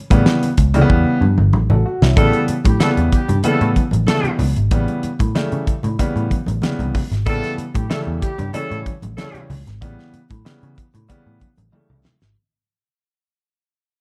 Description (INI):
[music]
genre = funk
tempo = 94 BPM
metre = 4/4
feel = straight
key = A mixolydian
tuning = A4 = 439 Hz
[part]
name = warm upright piano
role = stabs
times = 0.1-12.1 s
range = C#3 to A4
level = -23 LUFS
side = equal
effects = none
[part]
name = vintage muted picked electric bass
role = bass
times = 0.1-12.3 s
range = G1 to C#3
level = -20 LUFS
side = equal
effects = none
[part]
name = damped 70s drum kit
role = drums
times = 0.1-12.4 s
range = hi-hat, kick drum, snare drum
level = -21 LUFS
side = equal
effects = none
[part]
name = congas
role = percussion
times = 0.1-12.2 s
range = none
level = -27 LUFS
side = equal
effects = none
[part]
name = dark horn section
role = second line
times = 2.2-9.4 s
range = G3 to A4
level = -26 LUFS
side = equal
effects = none
[sound]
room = light reverb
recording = none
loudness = -17 LUFS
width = mono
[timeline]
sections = 0.0-2.2 A section; 2.2-12.4 B section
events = drum fill 0.9-2.2, 11.7-12.4; fade-out 2.2-12.4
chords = 0.0 A9